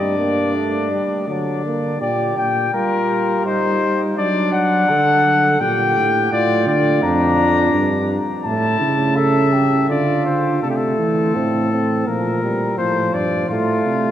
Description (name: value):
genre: classical, imitative canzona for brass ensemble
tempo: 84 BPM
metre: 3/4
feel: straight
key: G minor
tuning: A4 = 440 Hz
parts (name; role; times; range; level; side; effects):
- clear trumpet; melody; 0.0-14.1 s; F4 to Bb5; -19 LUFS; left 4 dB; none
- mellow flugelhorn; second line; 0.0-10.6 s; D4 to A4; -23 LUFS; right 3 dB; none
- warm euphonium; accompaniment; 0.0-2.0, 10.6-14.1 s; F3 to C4; -24 LUFS; right 2 dB; none
- mellow tuba; bass; 0.0-14.1 s; F2 to G3; -20 LUFS; right 1 dB; none
room: wet cathedral reverb, RT60 5.5 s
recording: worn, warbling old tape, cassette tape, warbly pitch drift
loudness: -15 LUFS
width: side -11 dB against mid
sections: 0.0-2.0 A section; 2.0-10.6 B section; 10.6-14.1 A section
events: none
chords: 0.0 Dsus4/G; 1.3 D; 2.0 Gm/Bb; 3.5 Cm/G; 4.2 D/F#; 5.6 Gm/Bb; 6.3 Dm/A; 7.7 Gm; 8.5 A; 9.9 Dm; 10.6 Am/C; 12.1 Bb5; 12.8 F